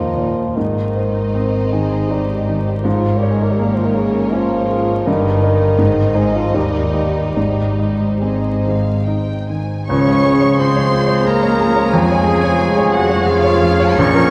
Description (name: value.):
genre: classical.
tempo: 69-91 BPM.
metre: 3/4.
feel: rubato.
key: Ab major, Db major from 9.9 s.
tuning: A4 = 438 Hz.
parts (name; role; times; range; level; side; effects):
warm baby grand piano; melody; 0.0-14.3 s; Bb1 to Eb5; -20 LUFS; equal; none.
warm symphonic violin section; melody; 0.0-14.3 s; Db5 to Db6; -29 LUFS; equal; none.
dark symphonic violin section; second line; 0.0-14.3 s; Bb3 to Db5; -29 LUFS; equal; none.
dark symphonic viola section; accompaniment; 0.0-14.3 s; F3 to Bb4; -31 LUFS; equal; none.
mellow bassoon; accompaniment; 0.0-14.3 s; Db3 to Bb3; -24 LUFS; equal; none.
rich symphonic double bass section; bass; 0.0-14.3 s; G1 to F2; -26 LUFS; equal; none.
warm symphonic cello section; bass; 0.0-14.3 s; Eb2 to Db4; -25 LUFS; equal; none.
clear clarinet; second line; 9.9-14.3 s; F4 to Db5; -27 LUFS; equal; none.
mellow large flute ensemble; second line; 9.9-14.3 s; F5 to Db6; -29 LUFS; equal; none.
warm oboe; second line; 9.9-14.3 s; Ab4 to Db5; -29 LUFS; equal; none.
clear trombone section; sustained chords; 9.9-14.3 s; F3 to Db4; -29 LUFS; equal; none.
dark French horn section; sustained chords; 9.9-14.3 s; F3 to Db4; -24 LUFS; equal; none.
dark trumpet section; stabs; 9.9-14.3 s; F4 to Db5; -26 LUFS; equal; none.
mellow tuba; bass; 9.9-14.3 s; F1 to Db2; -25 LUFS; equal; none.
room: wet church reverb, RT60 3.7 s.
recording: recorded in a church or concert hall, vinyl crackle.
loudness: -16 LUFS.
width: mono.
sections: 0.0-9.9 A section; 9.9-14.3 B section.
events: none.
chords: 0.0 Eb; 0.6 Ab; 2.9 Bbm7/Ab; 5.1 Eb/G; 5.8 Ab; 6.6 Eb; 7.4 Ab; 9.9 Db; 11.9 Db/F.